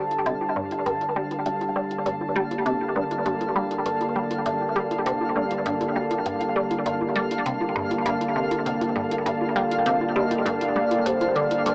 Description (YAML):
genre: ambient, sequencer-driven space music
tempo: 100 BPM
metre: 4/4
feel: straight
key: G minor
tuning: A4 = 441 Hz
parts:
  - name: sweeping resonant pad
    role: sustained chords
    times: 0.0-11.7 s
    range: D3 to A5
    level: -28 LUFS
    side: equal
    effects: chorus, cassette tape
  - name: resonant blip pluck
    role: riff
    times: 0.0-11.7 s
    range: G2 to G3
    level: -30 LUFS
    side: equal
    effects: phaser, analog chorus, cassette tape, analog delay
  - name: twinkling granular texture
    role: texture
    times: 0.0-11.7 s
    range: F5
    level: -36 LUFS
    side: equal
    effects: built-in reverb, cassette tape
  - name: electronic hi-hat and bongos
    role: percussion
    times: 0.1-11.7 s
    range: none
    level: -35 LUFS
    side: equal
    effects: analog delay
  - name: soft octave-layered synth lead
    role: melody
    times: 9.6-11.7 s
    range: C5 to F5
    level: -27 LUFS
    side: equal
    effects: chorus, phaser, cassette tape, analog delay
room: wet booth ambience, RT60 0.2 s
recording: home recording on cassette, small speaker sound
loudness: -25 LUFS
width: mono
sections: 0.0-11.7 A section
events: fade-in on synth texture 0.0-11.7; fade-in on drum 0.0-11.7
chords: 0.0 Gm